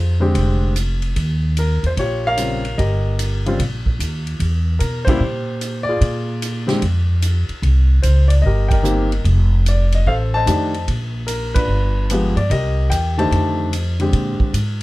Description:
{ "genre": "jazz piano trio", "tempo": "148 BPM", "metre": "4/4", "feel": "swing 66% on 8ths", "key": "Bb mixolydian", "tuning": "A4 = 440 Hz", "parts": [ { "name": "warm grand piano", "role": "melody", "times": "0.0-14.5 s", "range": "Db3 to A5", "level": "-21 LUFS", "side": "left 1 dB", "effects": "none" }, { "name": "upright bass", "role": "bass", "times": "0.0-14.8 s", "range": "F1 to Cb3", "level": "-17 LUFS", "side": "equal", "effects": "none" }, { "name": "swinging big-band drum kit", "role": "drums", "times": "0.3-14.8 s", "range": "hi-hat, kick drum, ride cymbal, snare drum", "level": "-26 LUFS", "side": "right 1 dB", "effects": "none" } ], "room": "little or no reverb", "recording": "none", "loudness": "-16 LUFS", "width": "side -19 dB against mid", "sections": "0.0-14.1 A section", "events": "band accent 5.0, 8.6, 11.5", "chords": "0.0 Bb13 (rootless); 1.2 Eb9; 4.4 Edim; 6.0 Bb7; 7.6 Cm7; 9.3 F13; 10.9 N.C.; 11.7 G7b9; 12.5 Cm7; 13.3 F13; 14.1 Bb13" }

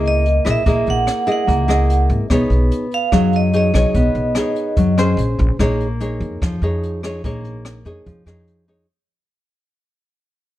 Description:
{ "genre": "bossa nova", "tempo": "146 BPM", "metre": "4/4", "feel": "straight", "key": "Bb minor", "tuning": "A4 = 438 Hz", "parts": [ { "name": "vibraphone with medium hard mallets", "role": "melody", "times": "0.0-5.2 s", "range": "Eb5 to Gb5", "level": "-20 LUFS", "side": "right 3 dB", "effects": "none" }, { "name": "nylon-string guitar", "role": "accompaniment", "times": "0.0-8.9 s", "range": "F3 to Eb5", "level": "-19 LUFS", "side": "left 1 dB", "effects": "none" }, { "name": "upright bass", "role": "bass", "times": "0.0-8.8 s", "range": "Ab1 to F#2", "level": "-19 LUFS", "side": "equal", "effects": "none" }, { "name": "jazz brush drum kit", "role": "drums", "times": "0.1-8.8 s", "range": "hi-hat, kick drum, rim click", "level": "-24 LUFS", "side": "equal", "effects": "none" } ], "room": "light reverb", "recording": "dark, warm production", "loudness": "-15 LUFS", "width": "side -14 dB against mid", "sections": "0.0-5.6 A section; 5.6-8.9 B section", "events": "fade-out 5.6-8.9", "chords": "0.0 Gb13/Bb; 2.3 B69; 5.2 Bbm9; 5.6 Bbm7" }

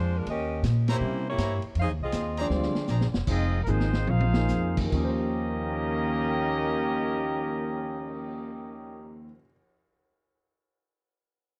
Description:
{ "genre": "jazz, big band swing", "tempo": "137-161 BPM", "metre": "4/4", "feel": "swing 66% on 8ths", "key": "Eb mixolydian", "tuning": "A4 = 439 Hz", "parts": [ { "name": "bright saxophone section", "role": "melody", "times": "0.0-3.1 s", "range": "Ab3 to F5", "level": "-34 LUFS", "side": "equal", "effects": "tape echo" }, { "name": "upright bass", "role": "bass", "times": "0.0-9.3 s", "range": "F1 to C3", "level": "-30 LUFS", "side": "equal", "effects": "none" }, { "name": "vintage drum kit", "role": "drums", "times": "0.3-8.3 s", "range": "crash cymbal, cymbal swell, hi-hat, kick drum, ride cymbal, snare drum, toms", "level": "-35 LUFS", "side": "equal", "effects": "none" }, { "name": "brilliant trumpet section", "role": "stabs", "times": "0.9-3.1 s", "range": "Fb4 to Bb5", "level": "-38 LUFS", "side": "equal", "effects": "none" }, { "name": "warm concert grand piano", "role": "accompaniment", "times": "1.0-9.5 s", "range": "Eb2 to C5", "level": "-36 LUFS", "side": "equal", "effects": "none" }, { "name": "clear trombone section", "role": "second line", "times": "2.4-9.2 s", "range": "Eb3 to G4", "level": "-34 LUFS", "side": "equal", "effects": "none" }, { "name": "clear trumpet section", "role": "melody", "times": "3.3-9.2 s", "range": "Ab3 to F5", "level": "-35 LUFS", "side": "equal", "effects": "none" } ], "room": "light reverb", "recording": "dry, close 1970s-style studio recording", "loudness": "-27 LUFS", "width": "mono", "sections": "0.0-3.3 A section; 3.3-4.9 B section; 4.9-8.4 C section", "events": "band accent 0.8; slowing down 1.8-4.9; drum fill 2.5-3.3, 3.7-4.5", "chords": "0.3 Eb7; 1.0 C7b9; 1.8 Fm7; 2.5 Bb9; 3.3 Fm7; 4.1 Bb9sus4; 4.9 Eb13" }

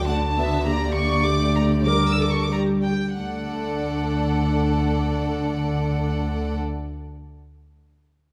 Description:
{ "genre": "quick classical-period movement for symphony orchestra", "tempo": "88-102 BPM", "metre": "4/4", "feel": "rubato", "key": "D major", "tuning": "A4 = 440 Hz", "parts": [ { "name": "warm chamber violin section", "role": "melody", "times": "0.0-6.6 s", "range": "F#5 to E6", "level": "-31 LUFS", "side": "equal", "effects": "none" }, { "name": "warm chamber violin section", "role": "second line", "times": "0.0-6.6 s", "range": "A4 to F#5", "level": "-33 LUFS", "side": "equal", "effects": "none" }, { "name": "dark symphonic viola section", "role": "accompaniment", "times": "0.0-6.5 s", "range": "G3 to Bb4", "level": "-28 LUFS", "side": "equal", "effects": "none" }, { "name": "dark chamber cello section", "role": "bass", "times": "0.0-6.5 s", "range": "D3", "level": "-29 LUFS", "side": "equal", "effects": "none" }, { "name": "warm studio double bass section", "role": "bass", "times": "0.0-6.5 s", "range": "D2", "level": "-30 LUFS", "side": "equal", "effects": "none" } ], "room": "wet recital hall reverb, RT60 1.6 s", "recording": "recorded in a church or concert hall", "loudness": "-23 LUFS", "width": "mono", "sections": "0.0-3.2 A section; 3.2-5.8 B section", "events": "slowing down 0.0-3.2", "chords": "0.0 D; 0.7 Gm/D; 3.2 D" }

